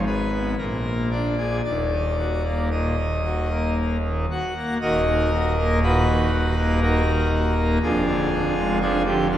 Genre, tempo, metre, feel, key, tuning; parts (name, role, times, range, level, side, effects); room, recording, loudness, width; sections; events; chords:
classical, chorale-style piece for pipe organ; 55-61 BPM; 3/4; rubato; Eb minor; A4 = 440 Hz
pipe organ, full organ; solo; 0.0-9.4 s; Eb1 to Gb5; -20 LUFS; equal
wet church reverb, RT60 2.8 s; heard from further back in the room; -20 LUFS; side -11 dB against mid
0.0-4.8 A section; 4.8-9.4 B section
0.0 Fdim/Ab (rootless); 0.6 Bb7; 1.7 Ebm; 7.8 Ddim/F